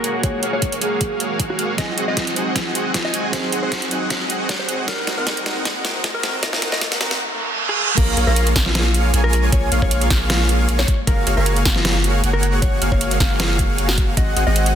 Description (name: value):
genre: future bass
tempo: 155 BPM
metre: 4/4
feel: swing 53% on 16ths, half-time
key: Bb minor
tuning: A4 = 441 Hz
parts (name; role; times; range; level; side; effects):
- mellow electric guitar; melody; 0.0-14.7 s; Gb4 to Eb5; -28 LUFS; left 2 dB; vintage 12-bit sampler grit, sidechain pumping, ping-pong delay
- soft round pluck; accompaniment; 0.0-7.2 s; Gb3 to F5; -29 LUFS; right 3 dB; lush chorus, sidechain pumping, ping-pong delay
- airy breathy pad; sustained chords; 0.0-14.8 s; Db3 to Gb4; -31 LUFS; equal; chorus, sidechain pumping
- dense compressed supersaw; riff; 0.0-14.7 s; Bb3 to Bb5; -24 LUFS; right 1 dB; sidechain pumping, low-pass filter
- long sustained 808-style bass; bass; 0.0-14.7 s; Gb1 to C2; -19 LUFS; equal; sidechain pumping, high-pass filter
- dubstep drum kit; drums; 0.0-14.7 s; crash cymbal, hi-hat, snare drum; -22 LUFS; right 1 dB; soft clipping on snare
- riser and reverse cymbal; sound effects; 0.0-8.0 s; none; -28 LUFS; right 4 dB; none
- electronic kick drum; drums; 0.2-14.3 s; none; -20 LUFS; equal; none
- airy dreamy lead; arpeggios; 8.0-14.7 s; F5 to Ab5; -28 LUFS; right 1 dB; chorus, sidechain pumping
room: light reverb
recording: dense, heavily limited modern master, high-pass filter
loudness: -16 LUFS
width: side -9 dB against mid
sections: 0.0-8.0 A section; 8.0-14.8 B section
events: build-up 0.0-8.0; riser 0.0-8.0; filter sweep 0.0-8.0; drum fill 1.8-7.2; reverse cymbal 7.2-8.0; drop 8.0-14.8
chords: 0.0 Gbmaj9; 1.8 Ab7; 4.9 Cm7b5; 8.0 Bbm7; 10.9 Gbmaj9; 14.2 Ab7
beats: | 0.23 0.62 1.01 1.40 | 1.78 2.17 2.56 2.94 | 3.33 3.72 4.11 4.49 | 4.88 5.27 5.66 6.04 | 6.43 6.82 7.20 7.59 | 7.98 8.36 8.75 9.14 | 9.53 9.91 10.30 10.69 | 11.07 11.46 11.85 12.23 | 12.62 13.01 13.40 13.78 | 14.17 14.56